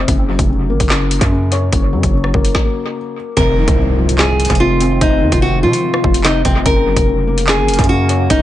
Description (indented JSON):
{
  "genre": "hip hop, drill",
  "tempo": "146 BPM",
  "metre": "4/4",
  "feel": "half-time",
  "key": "F phrygian",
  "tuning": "A4 = 440 Hz",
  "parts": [
    { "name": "felt-muted upright piano", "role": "accompaniment", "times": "0.0-8.4 s", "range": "C3 to Db5", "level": "-19 LUFS", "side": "left 4 dB", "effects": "analog delay" },
    { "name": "distorted 808-style bass", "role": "bass", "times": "0.0-8.4 s", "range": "F1 to C3", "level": "-17 LUFS", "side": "equal", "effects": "distortion" },
    { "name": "drill drum kit", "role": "drums", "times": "0.1-8.4 s", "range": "handclaps, hi-hat, kick drum, rim click, snare drum", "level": "-16 LUFS", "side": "equal", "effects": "analog delay" },
    { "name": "nylon-string guitar", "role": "melody", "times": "3.4-8.4 s", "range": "C4 to Bb4", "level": "-16 LUFS", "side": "equal", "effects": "analog delay" },
    { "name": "dark analog pad", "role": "sustained chords", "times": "4.3-8.4 s", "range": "Db3 to Bb4", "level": "-25 LUFS", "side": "right 2 dB", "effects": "chorus, phaser" },
    { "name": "impact", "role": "sound effects", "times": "3.4-5.0 s", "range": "none", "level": "-25 LUFS", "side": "right 2 dB", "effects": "none" }
  ],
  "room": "light reverb",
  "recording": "echo-heavy mix, nothing above 10.3 kHz",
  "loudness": "-12 LUFS",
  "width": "side -13 dB against mid",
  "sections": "0.0-3.4 A section; 3.4-8.4 B section",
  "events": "stop 2.5-3.4; impact 3.4-5.0",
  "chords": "0.1 Gb; 3.4 Fm7; 6.7 Gb"
}